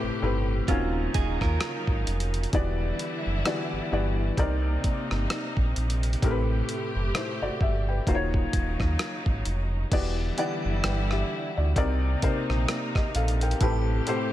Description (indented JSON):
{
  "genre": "contemporary R&B",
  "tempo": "65 BPM",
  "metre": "4/4",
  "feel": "swing 58% on 16ths",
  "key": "unclear",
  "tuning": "A4 = 440 Hz",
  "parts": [
    { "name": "felt-muted upright piano", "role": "accompaniment", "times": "0.0-14.3 s", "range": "A2 to G5", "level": "-30 LUFS", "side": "left 2 dB", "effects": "none" },
    { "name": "clear symphonic string section", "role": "sustained chords", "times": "0.0-14.3 s", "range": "C3 to G4", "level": "-34 LUFS", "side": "right 1 dB", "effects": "none" },
    { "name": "sub bass with octave", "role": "bass", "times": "0.0-14.0 s", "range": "D#1 to D#2", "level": "-27 LUFS", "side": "equal", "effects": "none" },
    { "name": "direct-recorded clean electric guitar", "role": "arpeggios", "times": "0.7-2.5 s", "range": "C4 to A#4", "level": "-34 LUFS", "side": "right 12 dB", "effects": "spring reverb, ping-pong delay" },
    { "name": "dusty soul sampler-style drum kit", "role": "drums", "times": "0.7-14.3 s", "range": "crash cymbal, hi-hat, kick drum, rim click", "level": "-28 LUFS", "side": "equal", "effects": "none" },
    { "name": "glassy synth bell", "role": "texture", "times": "10.4-14.3 s", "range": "G5 to A5", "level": "-40 LUFS", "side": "right 5 dB", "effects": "chorus, tremolo, ping-pong delay" }
  ],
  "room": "little or no reverb",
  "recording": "none",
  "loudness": "-24 LUFS",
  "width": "side -13 dB against mid",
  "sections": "0.0-9.9 A section; 9.9-14.3 B section",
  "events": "none",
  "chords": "0.0 Am7; 0.7 D#m7; 2.5 Em7; 4.4 Cm7; 6.2 Am7; 8.1 D#m7; 9.9 Em7; 11.8 Cm7; 13.6 Am7"
}